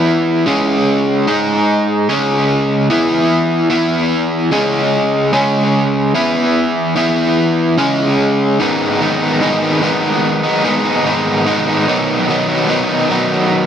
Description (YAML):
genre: rock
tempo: 74 BPM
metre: 4/4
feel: straight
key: G# minor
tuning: A4 = 440 Hz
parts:
  - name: overdriven semi-hollow guitar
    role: solo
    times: 0.0-13.7 s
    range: G#2 to G#4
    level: -12 LUFS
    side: equal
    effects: tremolo, tape echo
room: light reverb, digital ambience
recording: echo-heavy mix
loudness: -12 LUFS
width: side -8 dB against mid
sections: 0.0-8.6 A section; 8.6-13.7 B section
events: none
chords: 0.5 C#5; 1.3 G#5; 2.1 C#5; 2.9 E5; 4.5 C#5; 6.2 E5; 7.8 C#5; 8.6 G#m; 11.9 B